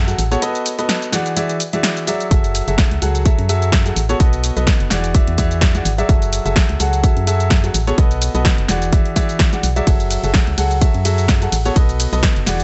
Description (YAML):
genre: piano house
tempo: 127 BPM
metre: 4/4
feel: swing 55% on 16ths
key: F# minor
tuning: A4 = 440 Hz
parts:
  - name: clear upright piano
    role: riff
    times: 0.0-12.6 s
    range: E3 to F#5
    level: -23 LUFS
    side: equal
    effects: vintage 12-bit sampler grit, sidechain pumping, digital delay
  - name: organ-like FM bass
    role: bass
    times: 0.0-12.6 s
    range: E1 to F#2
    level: -22 LUFS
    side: equal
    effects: sidechain pumping
  - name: punchy analog drum machine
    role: drums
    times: 0.1-12.6 s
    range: hi-hat, ride cymbal, shaker, snare drum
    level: -24 LUFS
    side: equal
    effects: none
  - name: electronic kick drum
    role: drums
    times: 2.3-12.3 s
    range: none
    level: -17 LUFS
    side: equal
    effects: none
room: digital ambience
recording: nothing above 8.0 kHz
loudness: -16 LUFS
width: mono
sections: 0.0-12.6 A section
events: none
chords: 0.4 B7; 1.1 E9; 2.3 F#m9; 4.2 B7; 4.9 E9; 6.1 F#m9; 8.0 B7; 8.7 E9; 9.9 F#m9; 11.8 B7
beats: | 0.42 0.89 1.37 1.84 | 2.31 2.78 3.26 3.73 | 4.20 4.67 5.15 5.62 | 6.09 6.56 7.04 7.51 | 7.98 8.45 8.93 9.40 | 9.87 10.34 10.81 11.29 | 11.76 12.23